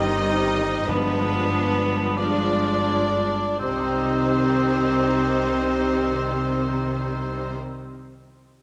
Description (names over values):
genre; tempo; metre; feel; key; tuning
classical, slow romantic movement for symphony orchestra; 41-51 BPM; 4/4; rubato; C minor; A4 = 440 Hz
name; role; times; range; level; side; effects
warm symphonic violin section; melody; 0.0-7.6 s; B4 to Eb5; -32 LUFS; equal; none
clear symphonic violin section; second line; 0.0-7.6 s; C4 to Eb4; -34 LUFS; equal; none
mellow cor anglais; second line; 0.0-7.5 s; B3 to Eb4; -30 LUFS; equal; none
mellow hollow concert flute; second line; 0.0-7.5 s; D4 to G4; -32 LUFS; equal; none
rich symphonic viola section; accompaniment; 0.0-7.6 s; Eb3 to Ab3; -32 LUFS; equal; none
dark French horn section; sustained chords; 0.0-7.6 s; B3 to Eb4; -31 LUFS; equal; none
concert harp; arpeggios; 0.0-7.8 s; G2 to Eb5; -35 LUFS; equal; none
rich symphonic double bass section; bass; 0.0-7.6 s; G1 to C2; -37 LUFS; equal; none
warm studio cello section; bass; 0.0-7.6 s; G2 to C3; -31 LUFS; equal; none
timpani; percussion; 0.0-7.6 s; G2 to C3; -38 LUFS; equal; none
room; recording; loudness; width
wet concert hall reverb, RT60 2.3 s; none; -23 LUFS; mono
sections
0.0-3.6 A section; 3.6-8.6 B section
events
slowing down 0.0-3.6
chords
0.0 Cm/G; 0.9 G7b9; 3.6 Cm